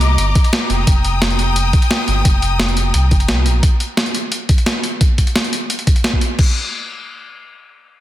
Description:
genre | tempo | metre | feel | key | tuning
liquid drum and bass | 174 BPM | 4/4 | straight | unclear | A4 = 442 Hz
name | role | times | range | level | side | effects
rich symphonic string section | sustained chords | 0.0-3.6 s | Eb5 to Eb6 | -21 LUFS | left 3 dB | sidechain pumping
sub bass with octave | bass | 0.0-3.6 s | F1 to C2 | -16 LUFS | equal | tube saturation
breakbeat sampler-style drum kit | drums | 0.0-6.5 s | crash cymbal, hi-hat, snare drum | -19 LUFS | equal | none
electronic kick drum | drums | 0.4-6.5 s | none | -13 LUFS | equal | overdrive
room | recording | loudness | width
light reverb, digital ambience | dense, heavily limited modern master | -13 LUFS | side -14 dB against mid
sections
0.0-6.4 A section; 6.4-8.0 B section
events
none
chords
0.0 Cm7; 0.7 F9sus4; 3.6 N.C.

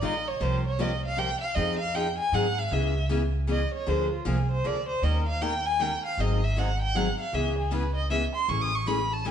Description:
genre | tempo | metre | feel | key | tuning
acoustic string swing (jazz manouche) | 156 BPM | 3/4 | swing 62% on 8ths | unclear | A4 = 436 Hz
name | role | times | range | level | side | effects
warm violin | melody | 0.0-9.3 s | E#4 to D#6 | -29 LUFS | right 1 dB | none
picked steel-string acoustic guitar | accompaniment | 0.0-9.3 s | C3 to Bb4 | -31 LUFS | left 2 dB | none
upright bass | bass | 0.0-9.3 s | G#1 to Ab2 | -28 LUFS | equal | none
room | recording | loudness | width
moderate stone room reverb, RT60 1.5 s | band playing live in one room, nothing above 10.4 kHz | -24 LUFS | side -8 dB against mid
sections
0.0-2.7 A section; 2.7-9.3 A section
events
violin solo 0.0-9.3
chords
0.4 C7sus4; 1.6 Fm7; 2.3 Ab7; 2.7 C#m7; 3.9 A#7; 5.0 D#7; 6.2 G#7; 7.3 C#m7; 8.5 Amaj7

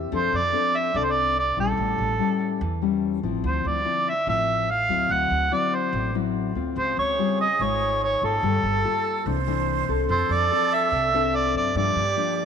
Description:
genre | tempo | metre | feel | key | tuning
bossa nova | 144 BPM | 4/4 | straight | F major | A4 = 440 Hz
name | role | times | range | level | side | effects
nylon-string guitar | accompaniment | 0.0-12.4 s | G2 to A4 | -27 LUFS | left 10 dB | none
upright bass | bass | 0.0-12.2 s | G1 to G2 | -29 LUFS | right 2 dB | none
mellow harmonica | melody | 0.1-12.4 s | A4 to Gb5 | -23 LUFS | right 2 dB | none
breathy jazz flute | second line | 6.8-12.4 s | G4 to C5 | -29 LUFS | right 10 dB | none
room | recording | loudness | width
moderate plate reverb, RT60 3.3 s | 1960s-style stereo with parts hard left and right | -21 LUFS | side -7 dB against mid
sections
0.1-12.4 A section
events
none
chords
0.1 F6; 1.8 A7; 3.4 Dm9; 6.8 Dbmaj7#11; 8.4 Gm9; 9.3 C9; 10.1 F6; 11.8 Gm7

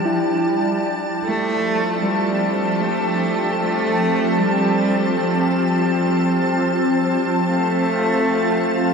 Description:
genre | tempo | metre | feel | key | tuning
ambient | 77 BPM | 4/4 | straight | F major | A4 = 444 Hz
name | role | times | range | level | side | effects
rich cello | melody | 0.0-8.9 s | F3 to A3 | -22 LUFS | right 1 dB | ping-pong delay
soft additive organ-like pad | sustained chords | 0.0-8.9 s | F3 to A5 | -19 LUFS | equal | ensemble chorus, built-in reverb
muted felt-like synth keys | arpeggios | 0.0-2.3 s | E4 to G5 | -26 LUFS | right 2 dB | chorus, ping-pong delay
drifting glass-harmonics texture | texture | 0.0-8.9 s | F6 to A6 | -44 LUFS | left 4 dB | none
room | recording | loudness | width
wet huge ambient reverb, RT60 8.1 s | dark, warm production | -17 LUFS | side -5 dB against mid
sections
0.0-1.3 A section; 1.3-8.9 B section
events
none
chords
0.0 G7(no3); 1.3 Fmaj7

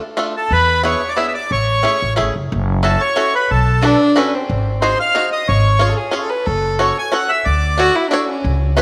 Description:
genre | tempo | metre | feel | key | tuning
musette waltz | 182 BPM | 3/4 | straight | F# minor | A4 = 440 Hz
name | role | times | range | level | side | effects
bluegrass banjo | accompaniment | 0.2-8.8 s | A3 to C#5 | -23 LUFS | equal | none
accordion | melody | 0.4-8.8 s | A4 to G#5 | -20 LUFS | equal | none
upright bass | bass | 0.5-8.8 s | F#1 to E2 | -20 LUFS | equal | none
warm violin | second line | 3.8-8.7 s | B#3 to B4 | -20 LUFS | equal | none
room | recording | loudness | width
wet plate reverb, RT60 2.5 s | none | -16 LUFS | mono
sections
0.0-2.5 A section; 2.5-8.8 B section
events
none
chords
0.0 Dm; 0.5 E7; 1.5 Amaj7; 2.5 F#m7; 3.5 Bm7; 4.5 G#7; 5.5 C#/G#; 6.5 F#m; 7.5 Dmaj7

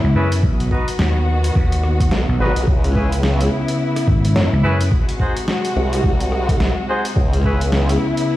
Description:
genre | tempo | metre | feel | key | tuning
glitch hop | 107 BPM | 4/4 | swing 60% on 16ths | unclear | A4 = 438 Hz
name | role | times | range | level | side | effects
warm studio string section | sustained chords | 0.0-8.4 s | B#2 to F#4 | -22 LUFS | left 1 dB | sidechain pumping
vintage slap bass | bass | 0.0-4.9 s | G#1 to F#2 | -17 LUFS | equal | none
clear horn section | stabs | 0.1-7.6 s | B3 to B#4 | -25 LUFS | equal | sidechain pumping, ping-pong delay
boom bap sampler-style drum kit | drums | 0.3-8.3 s | hi-hat, rim click, snare drum | -26 LUFS | equal | studio ambience
electronic kick drum | drums | 0.4-7.6 s | none | -18 LUFS | equal | studio ambience
formant-sweep wobble bass | bass | 2.1-8.0 s | G#1 to F#2 | -18 LUFS | equal | chorus, tube saturation
room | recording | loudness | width
light reverb | played on a big sound system in a bare room, stone room reverb, vinyl crackle | -15 LUFS | side -15 dB against mid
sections
0.0-8.4 A section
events
none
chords
0.4 B; 2.7 C#m7; 4.9 G#7; 7.2 C#m7

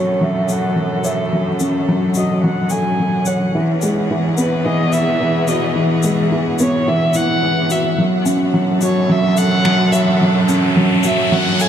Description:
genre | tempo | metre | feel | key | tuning
piano and strings electronica | 108 BPM | 4/4 | straight | F# minor | A4 = 440 Hz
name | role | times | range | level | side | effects
rich violin | melody | 0.0-11.7 s | B4 to G#5 | -21 LUFS | right 1 dB | low-pass filter, digital delay
rich string quartet | sustained chords | 0.0-11.7 s | E3 to F#5 | -23 LUFS | right 2 dB | none
felt-muted upright piano | riff | 0.0-11.7 s | E3 to C#5 | -16 LUFS | equal | digital delay
rich studio cello section | bass | 0.0-11.7 s | E2 to F#2 | -26 LUFS | equal | high-pass filter
shaker and finger snaps | drums | 0.5-11.7 s | none | -27 LUFS | left 5 dB | none
riser | sound effects | 8.8-11.7 s | none | -23 LUFS | left 2 dB | none
room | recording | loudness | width
moderate huge ambient reverb, RT60 4.9 s | dark, warm production | -14 LUFS | side -9 dB against mid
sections
0.0-11.7 A section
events
build-up 0.0-11.7; filter sweep on violin 0.0-11.7; riser 8.8-11.7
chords
0.0 F#m; 3.5 Eadd9; 8.0 F#m

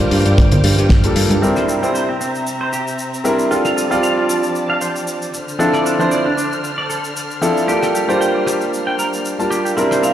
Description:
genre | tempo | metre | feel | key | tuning
nu-disco, nu disco | 115 BPM | 4/4 | swing 54% on 16ths | unclear | A4 = 439 Hz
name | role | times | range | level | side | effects
vibraphone with hard mallets | melody | 0.0-0.9, 10.0-10.1 s | D5 to F5 | -25 LUFS | right 2 dB | digital delay
clear grand piano | accompaniment | 0.0-10.1 s | F3 to A5 | -17 LUFS | equal | sidechain pumping, digital delay
rich studio string section | sustained chords | 0.0-10.1 s | C3 to F6 | -25 LUFS | equal | sidechain pumping, low-pass filter
damped 70s drum kit | drums | 0.0-10.1 s | hi-hat, rim click, shaker, snare drum | -26 LUFS | left 1 dB | none
picked electric bass | bass | 0.1-1.4 s | G1 to G2 | -15 LUFS | equal | tube saturation, sidechain pumping
kick drum | drums | 0.4-1.0 s | none | -13 LUFS | equal | none
congas | percussion | 0.5-1.4 s | none | -21 LUFS | equal | none
semi-hollow electric guitar | riff | 1.4-10.1 s | C4 to G5 | -22 LUFS | right 2 dB | lush chorus, low-pass filter, digital delay
room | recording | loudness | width
moderate lush hall reverb, RT60 2.1 s | played on a big sound system in a bare room, large studio reverb | -14 LUFS | side -11 dB against mid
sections
0.0-1.4 A section; 1.4-10.1 B section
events
filter sweep on string section 1.4-10.1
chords
0.0 Gm7; 1.4 C7; 3.5 F6; 5.3 Dm7; 7.7 Gm7

